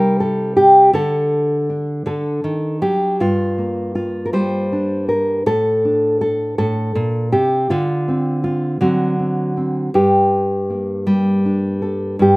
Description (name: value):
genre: folk, solo fingerstyle acoustic guitar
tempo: 53 BPM (dotted quarters)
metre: 6/8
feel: straight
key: G minor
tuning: A4 = 440 Hz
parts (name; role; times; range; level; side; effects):
- nylon-string guitar; solo; 0.0-12.4 s; G2 to C5; -15 LUFS; equal; none
room: little or no reverb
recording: recorded outdoors, with no room sound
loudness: -15 LUFS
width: side -23 dB against mid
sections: 0.0-12.2 A section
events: none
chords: 0.0 Cm; 0.9 D; 3.2 Gm; 5.5 Amadd11; 7.7 Dm7; 8.8 D7; 9.9 Gmadd9